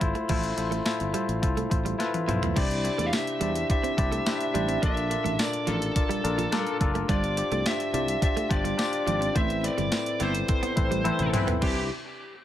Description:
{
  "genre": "1980s-style pop",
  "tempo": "106 BPM",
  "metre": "4/4",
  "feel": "straight",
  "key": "C major",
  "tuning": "A4 = 440 Hz",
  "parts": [
    { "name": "tine electric piano", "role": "accompaniment", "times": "0.0-11.9 s", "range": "C2 to E5", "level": "-29 LUFS", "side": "left 4 dB", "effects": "none" },
    { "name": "direct-recorded clean electric guitar", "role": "riff", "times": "0.0-11.8 s", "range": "F3 to C4", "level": "-35 LUFS", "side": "right 6 dB", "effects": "wide subtle chorus" },
    { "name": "sustaining fretless electric bass", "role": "bass", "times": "0.0-11.9 s", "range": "F#1 to E2", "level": "-30 LUFS", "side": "equal", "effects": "lush chorus" },
    { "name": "clean 12-bit digital drum machine", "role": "drums", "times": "0.0-11.8 s", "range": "crash cymbal, hi-hat, kick drum, snare drum, tambourine, toms", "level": "-28 LUFS", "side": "equal", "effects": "overdrive" },
    { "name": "bluesy overdriven lead guitar", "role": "melody", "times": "2.6-11.9 s", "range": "G4 to F5", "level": "-31 LUFS", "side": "right 2 dB", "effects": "distortion, tape echo" },
    { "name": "warm horn section", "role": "stabs", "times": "10.2-11.8 s", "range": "E3 to C5", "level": "-38 LUFS", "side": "right 1 dB", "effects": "tape echo" }
  ],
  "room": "light reverb",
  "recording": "none",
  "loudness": "-24 LUFS",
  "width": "side -12 dB against mid",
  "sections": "0.3-2.6 A section; 2.6-11.6 B section",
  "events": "drum fill 2.0-2.6, 11.1-11.6; band accent 9.4-11.6",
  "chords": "0.3 Fmaj7; 2.6 Cadd9; 4.8 Bbmaj7; 7.1 G7sus4; 9.4 Amadd9; 11.6 Cadd9"
}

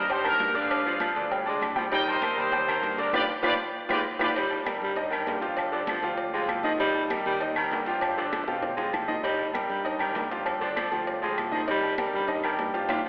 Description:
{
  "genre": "latin, salsa",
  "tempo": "197 BPM",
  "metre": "4/4",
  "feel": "straight",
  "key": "C minor",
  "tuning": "A4 = 440 Hz",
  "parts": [
    { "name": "bright trumpet section", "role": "melody", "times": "0.0-4.3 s", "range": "Eb4 to G5", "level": "-30 LUFS", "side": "equal", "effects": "none" },
    { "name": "raspy baritone saxophone", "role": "second line", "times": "0.0-13.1 s", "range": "Eb3 to Ab3", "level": "-34 LUFS", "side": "equal", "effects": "none" },
    { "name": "clear concert grand piano", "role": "accompaniment", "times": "0.0-13.0 s", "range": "D3 to D6", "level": "-32 LUFS", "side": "equal", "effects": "none" },
    { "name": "fingered electric bass", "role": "bass", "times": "0.0-13.0 s", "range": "G1 to B2", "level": "-43 LUFS", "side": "equal", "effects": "none" },
    { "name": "agogo bells and timbales", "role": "percussion", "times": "0.1-13.0 s", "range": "none", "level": "-36 LUFS", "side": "equal", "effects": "none" },
    { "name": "congas", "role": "percussion", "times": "0.1-13.0 s", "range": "none", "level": "-45 LUFS", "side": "equal", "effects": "none" },
    { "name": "cowbell and bongos", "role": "percussion", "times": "0.1-13.0 s", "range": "none", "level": "-39 LUFS", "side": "equal", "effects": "none" },
    { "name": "claves", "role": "percussion", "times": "0.3-13.0 s", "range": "none", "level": "-40 LUFS", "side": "equal", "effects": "none" }
  ],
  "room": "wet concert hall reverb, RT60 2.1 s",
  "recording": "recorded in a church or concert hall, telephone sound",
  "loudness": "-27 LUFS",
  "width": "mono",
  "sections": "0.0-4.4 A section; 4.4-13.1 B section",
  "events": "drum fill 3.1-4.4, 8.3-9.2; band accent 3.1-4.4, 12.9",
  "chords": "0.0 Cm7 (rootless); 0.7 G7b9; 1.9 Cm7; 3.1 G7; 4.4 Ebadd9; 5.6 G5; 6.8 Cm7; 8.0 G7; 9.2 Cm7; 10.5 G5; 11.7 Cm7"
}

